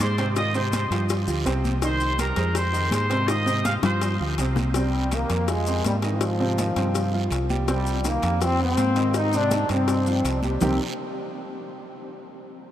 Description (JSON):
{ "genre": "latin, salsa", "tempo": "164 BPM", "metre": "4/4", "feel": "straight", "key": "C minor", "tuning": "A4 = 440 Hz", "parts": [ { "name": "bright trumpet section", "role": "melody", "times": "0.0-4.2 s", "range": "Bb4 to Eb6", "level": "-28 LUFS", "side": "equal", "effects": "none" }, { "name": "warm upright piano", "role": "accompaniment", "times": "0.0-10.8 s", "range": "C3 to C6", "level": "-29 LUFS", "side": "right 2 dB", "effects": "none" }, { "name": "fingered electric bass", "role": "bass", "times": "0.0-10.8 s", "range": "C2 to Ab2", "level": "-25 LUFS", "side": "equal", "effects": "none" }, { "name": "congas", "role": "percussion", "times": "0.0-10.7 s", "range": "none", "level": "-34 LUFS", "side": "left 1 dB", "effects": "none" }, { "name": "cowbell and bongos", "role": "percussion", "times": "0.0-10.7 s", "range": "none", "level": "-32 LUFS", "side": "left 7 dB", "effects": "none" }, { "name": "guiro", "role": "percussion", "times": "0.0-10.7 s", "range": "none", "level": "-39 LUFS", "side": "right 6 dB", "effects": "none" }, { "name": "maracas", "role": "percussion", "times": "0.0-10.7 s", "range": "none", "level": "-39 LUFS", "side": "left 7 dB", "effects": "none" }, { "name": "bright trombone section", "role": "melody", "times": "4.8-10.8 s", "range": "F3 to Eb4", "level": "-26 LUFS", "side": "left 1 dB", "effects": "none" } ], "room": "wet huge ambient reverb, RT60 7.9 s", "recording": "in a vast, echoing space", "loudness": "-21 LUFS", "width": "side -11 dB against mid", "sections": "0.0-4.8 A section; 4.8-10.6 B section; 10.6-12.1 C section", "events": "drum fill 3.8-4.8", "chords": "0.4 Ab6; 1.1 G7sus4; 1.8 Cm7; 2.6 Fm7; 3.3 Ab6; 4.0 G7sus4; 4.8 Cm7; 5.5 Fm7; 6.2 Ab6; 6.9 G7sus4; 7.7 Cm7; 8.4 Fm7; 9.1 Ab; 9.9 G7sus4; 10.6 Cm7" }